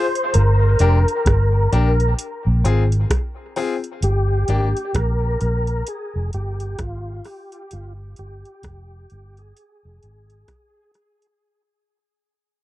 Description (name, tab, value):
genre	dub reggae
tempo	65 BPM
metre	4/4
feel	swing 60% on 16ths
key	unclear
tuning	A4 = 440 Hz
part	tonewheel organ	melody	0.0-10.9 s	F4 to C5	-25 LUFS	equal	overdrive, chorus vibrato, slow rotary speaker, dub echo
part	bright baby grand piano	stabs	0.0-4.7 s	Bb3 to Bb4	-25 LUFS	left 5 dB	dub echo
part	soft vintage rhythm box	drums	0.2-11.4 s	hi-hat, kick drum, rim click	-23 LUFS	equal	none
part	vintage muted fingered electric bass	bass	0.3-10.4 s	F1 to Bb1	-18 LUFS	equal	none
room	little or no reverb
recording	dry, close 1970s-style studio recording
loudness	-17 LUFS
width	side -15 dB against mid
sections	0.0-11.4 A section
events	fade-out 0.0-11.4; break 4.0-11.4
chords	0.3 Gm; 2.2 Fm; 4.0 Gm; 5.9 Fm; 7.7 Fsus2; 9.6 Fm